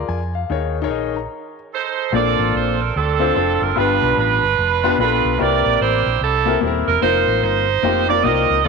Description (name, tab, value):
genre	uptempo gospel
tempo	148 BPM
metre	4/4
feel	swing 62% on 8ths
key	Bb major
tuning	A4 = 440 Hz
part	clear grand piano	accompaniment	0.0-8.7 s	G2 to Bb5	-21 LUFS	left 12 dB	none
part	hollow-body short-scale fingered electric bass	bass	0.0-8.7 s	Eb1 to F2	-23 LUFS	right 1 dB	none
part	edgy saxophone section	melody	1.7-8.7 s	C4 to Eb5	-17 LUFS	right 11 dB	slapback echo
room	wet spring reverb, RT60 2.6 s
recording	1960s-style stereo with parts hard left and right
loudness	-15 LUFS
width	side -4 dB against mid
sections	0.0-2.1 A section; 2.1-8.7 B section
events	stop 1.3-2.1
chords	0.5 Eb7sus4; 1.3 Adim; 2.1 Bbmaj9; 3.8 G7; 5.4 C7; 7.0 F7sus4; 7.8 F9sus4